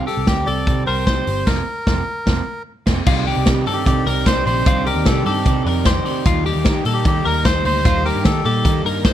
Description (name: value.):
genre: jangly indie pop.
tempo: 150 BPM.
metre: 4/4.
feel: straight.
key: unclear.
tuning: A4 = 438 Hz.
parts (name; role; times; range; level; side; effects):
electric guitar through a small old amp; accompaniment; 0.0-9.1 s; C3 to D5; -24 LUFS; right 10 dB; none.
twelve-string electric guitar; arpeggios; 0.0-9.1 s; F4 to C5; -24 LUFS; left 8 dB; slapback echo.
vintage muted picked electric bass; bass; 0.0-9.1 s; F1 to Eb3; -22 LUFS; equal; none.
melodica; melody; 0.1-8.8 s; G4 to D5; -22 LUFS; left 1 dB; slapback echo.
vintage drum kit; drums; 0.1-9.1 s; crash cymbal, hi-hat, kick drum, ride cymbal, snare drum; -19 LUFS; equal; none.
string machine, violas; sustained chords; 3.1-9.1 s; C3 to G4; -29 LUFS; equal; none.
room: little or no reverb.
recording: none.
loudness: -15 LUFS.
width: side -11 dB against mid.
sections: 0.0-3.1 A section; 3.1-9.1 B section.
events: band accent 1.5-3.1.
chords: 0.0 Cm; 1.5 Fsus4; 3.1 Cmadd9; 6.3 Eb.